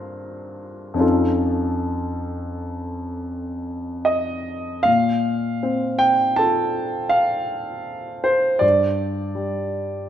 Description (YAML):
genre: classical, impressionist solo piano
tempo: 76-83 BPM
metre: 5/4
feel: rubato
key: unclear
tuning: A4 = 440 Hz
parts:
  - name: warm concert grand piano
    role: solo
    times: 0.0-10.1 s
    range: F2 to A6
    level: -20 LUFS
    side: equal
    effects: none
room: moderate recital hall reverb, RT60 1.5 s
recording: minimal, uncompressed stereo recording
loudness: -19 LUFS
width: side -10 dB against mid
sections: 0.0-4.9 A section; 4.9-10.1 B section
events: none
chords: 0.0 Gm11; 1.0 Faug7; 4.9 Bbsus2; 8.6 G5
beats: 0.28 | 1.02 1.81 2.59 3.33 4.09 | 4.87 5.63 6.39 7.14 7.89 | 8.63 9.35